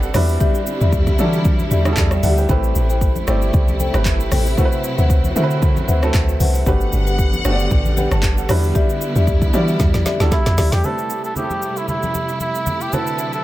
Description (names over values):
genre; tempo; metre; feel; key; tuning
amapiano; 115 BPM; 4/4; swing 55% on 16ths; A dorian; A4 = 440 Hz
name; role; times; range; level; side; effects
clear grand piano; accompaniment; 0.0-13.4 s; D3 to D6; -25 LUFS; right 3 dB; none
warm studio string section; sustained chords; 0.0-13.4 s; C3 to F#5; -26 LUFS; right 2 dB; sidechain pumping
deep log drum bass; bass; 0.0-10.8 s; F#1 to E3; -18 LUFS; equal; none
deep house drum kit; drums; 0.0-13.4 s; handclaps, hi-hat, kick drum, rim click, shaker, snare drum; -20 LUFS; equal; none
marimba with medium mallets; stabs; 0.1-10.7 s; G4 to G5; -25 LUFS; left 6 dB; ping-pong delay
congas; percussion; 0.1-13.1 s; none; -27 LUFS; left 1 dB; none
trumpet with cup mute; melody; 10.3-13.4 s; E4 to A4; -22 LUFS; right 2 dB; ping-pong delay
room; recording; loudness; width
small room ambience; none; -15 LUFS; side -15 dB against mid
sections
0.0-10.8 A section; 10.8-13.4 B section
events
drop 0.0-10.8; drum fill 9.8-10.8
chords
0.1 Em7; 2.5 Am7; 4.6 D13; 6.7 Gmaj7; 8.5 Em7; 10.8 Am7; 12.9 D13